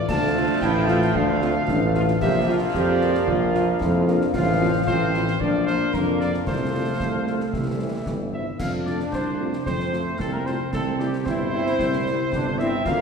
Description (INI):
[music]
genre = military-style march for wind band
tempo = 113 BPM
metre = 2/4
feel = straight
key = F major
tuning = A4 = 441 Hz
[part]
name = dark cornet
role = melody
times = 0.0-13.0 s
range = G4 to A5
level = -29 LUFS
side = left 1 dB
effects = none
[part]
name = mellow euphonium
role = second line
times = 0.0-13.0 s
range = G3 to G4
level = -27 LUFS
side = right 1 dB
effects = none
[part]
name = warm woodwind section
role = second line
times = 0.1-13.0 s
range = G4 to F5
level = -32 LUFS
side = left 1 dB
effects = none
[part]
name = clear trombone section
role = sustained chords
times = 0.1-13.0 s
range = E3 to E4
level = -28 LUFS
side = right 2 dB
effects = none
[part]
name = warm tuba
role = bass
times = 0.1-13.0 s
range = G1 to F2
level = -24 LUFS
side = equal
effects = none
[part]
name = concert snare drum, clash cymbals and concert bass drum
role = drums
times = 0.1-13.0 s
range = none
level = -31 LUFS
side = left 1 dB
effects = none
[part]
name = mellow French horn section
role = accompaniment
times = 0.4-12.7 s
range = F3 to F4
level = -33 LUFS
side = left 4 dB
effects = none
[sound]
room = wet concert hall reverb, RT60 2.2 s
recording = heard from further back in the room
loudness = -20 LUFS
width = side -6 dB against mid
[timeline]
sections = 0.0-8.6 A section; 8.6-13.0 B section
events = none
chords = 0.0 Dm; 2.2 Bb; 4.3 F/A; 5.4 Bb; 6.5 F/C; 7.5 C; 8.6 F; 10.7 C